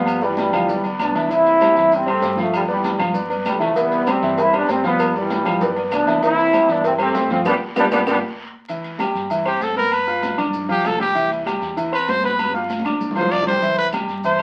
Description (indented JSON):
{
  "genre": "latin, salsa",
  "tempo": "195 BPM",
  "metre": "4/4",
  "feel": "straight",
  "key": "C major",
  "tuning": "A4 = 440 Hz",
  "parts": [
    { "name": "bright trombone section", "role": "melody", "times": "0.0-8.2 s", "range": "D3 to E4", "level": "-20 LUFS", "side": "equal", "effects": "none" },
    { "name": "clear concert grand piano", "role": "accompaniment", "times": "0.0-14.4 s", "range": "E3 to F6", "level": "-25 LUFS", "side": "equal", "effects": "none" },
    { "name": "upright bass", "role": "bass", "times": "0.0-14.4 s", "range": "G1 to G2", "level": "-37 LUFS", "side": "equal", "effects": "none" },
    { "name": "agogo bells and timbales", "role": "percussion", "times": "0.1-14.4 s", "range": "none", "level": "-30 LUFS", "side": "equal", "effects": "none" },
    { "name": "claves", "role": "percussion", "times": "0.1-14.4 s", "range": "none", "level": "-37 LUFS", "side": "equal", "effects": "none" },
    { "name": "congas", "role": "percussion", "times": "0.1-14.4 s", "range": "none", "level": "-32 LUFS", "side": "equal", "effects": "none" },
    { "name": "guiro", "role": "percussion", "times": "0.1-14.4 s", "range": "none", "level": "-42 LUFS", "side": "equal", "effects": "none" },
    { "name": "maracas", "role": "percussion", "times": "0.1-14.4 s", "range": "none", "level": "-49 LUFS", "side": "equal", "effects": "none" },
    { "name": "cowbell", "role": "percussion", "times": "3.8-8.1 s", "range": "none", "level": "-28 LUFS", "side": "equal", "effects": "none" },
    { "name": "brilliant trumpet", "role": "melody", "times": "9.5-14.4 s", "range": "E4 to D5", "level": "-22 LUFS", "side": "equal", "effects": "none" }
  ],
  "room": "wet studio reverb, RT60 0.6 s",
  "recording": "very old 78 rpm record, vinyl crackle",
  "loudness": "-19 LUFS",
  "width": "mono",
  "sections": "0.0-8.7 A section; 8.7-14.4 B section",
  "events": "drum fill 7.5-8.7, 12.4-13.6; band accent 7.5-8.7; trumpet solo 8.7-14.4",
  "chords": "0.1 G7; 1.3 C; 2.5 G7; 3.8 C; 5.0 G7; 6.2 C; 7.5 G7; 8.7 C; 9.9 G7; 11.2 C; 12.4 G7; 13.6 C",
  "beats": "| 0.07 0.38 0.69 1.00 | 1.30 1.61 1.92 2.23 | 2.54 2.84 3.15 3.46 | 3.77 4.07 4.38 4.69 | 5.00 5.30 5.61 5.92 | 6.23 6.53 6.84 7.15 | 7.46 7.76 8.07 8.38 | 8.69 9.00 9.31 9.62 | 9.92 10.23 10.54 10.85 | 11.16 11.47 11.77 12.08 | 12.39 12.70 13.01 13.32 | 13.63 13.93 14.24"
}